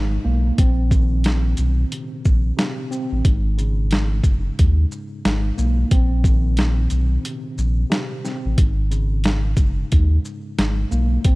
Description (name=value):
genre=hip hop, boom-bap hip-hop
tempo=90 BPM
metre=4/4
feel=swing 61% on 16ths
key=unclear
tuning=A4 = 437 Hz
part: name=mellow tine electric piano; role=accompaniment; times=0.0-11.4 s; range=G#2 to B#3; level=-28 LUFS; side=equal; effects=medium stereo tremolo, high-pass filter, low-pass filter, cassette tape
part: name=warm sub bass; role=bass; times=0.0-11.4 s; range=F#1 to D#2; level=-19 LUFS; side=equal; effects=none
part: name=boom bap sampler-style drum kit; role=drums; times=0.6-11.4 s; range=hi-hat, kick drum, shaker, snare drum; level=-19 LUFS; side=equal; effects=cassette tape
room=digital ambience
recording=home recording on cassette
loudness=-17 LUFS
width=side -22 dB against mid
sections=0.0-11.4 A section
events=break 7.2-8.6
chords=0.0 G#sus4; 0.6 A#sus24; 3.2 G#sus4; 5.9 A#sus24; 8.6 G#sus4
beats=| 0.58 1.25 1.91 2.58 | 3.25 3.91 4.58 5.25 | 5.91 6.58 7.25 7.91 | 8.58 9.25 9.91 10.58 | 11.25